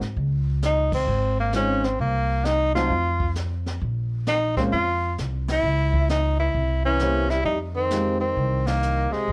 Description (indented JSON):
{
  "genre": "jazz, small-group swing and bop",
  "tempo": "132 BPM",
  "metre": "4/4",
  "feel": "swing 66% on 8ths",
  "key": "unclear",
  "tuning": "A4 = 439 Hz",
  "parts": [
    { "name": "upright bass", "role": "bass", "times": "0.0-9.3 s", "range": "Ab1 to Ab2", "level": "-27 LUFS", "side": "equal", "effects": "none" },
    { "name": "jazz brush drum kit", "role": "drums", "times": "0.0-9.3 s", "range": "brushed snare drum, crash cymbal, hi-hat, kick drum, ride cymbal, snare drum", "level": "-34 LUFS", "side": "equal", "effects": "none" },
    { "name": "clear tenor saxophone", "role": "melody", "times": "0.7-9.3 s", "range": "Ab3 to F4", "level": "-26 LUFS", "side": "equal", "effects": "none" },
    { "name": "warm grand piano", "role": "accompaniment", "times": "1.5-8.2 s", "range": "Gb3 to G4", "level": "-30 LUFS", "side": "equal", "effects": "none" },
    { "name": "warm trombone", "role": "second line", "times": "6.9-9.3 s", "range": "C3 to G3", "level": "-33 LUFS", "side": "equal", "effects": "none" }
  ],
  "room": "moderate club reverb, RT60 0.7 s",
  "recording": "worn, warbling old tape, cassette tape, warbly pitch drift",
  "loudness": "-23 LUFS",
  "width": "mono",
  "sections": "0.0-7.5 A section; 7.5-9.3 B section",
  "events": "band accent 0.9, 5.4, 8.6",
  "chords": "0.2 Dbmaj9; 2.0 Cm7b5; 2.9 N.C.; 3.8 Bb5; 5.6 Dbm; 6.6 C7b9; 7.5 Fm9"
}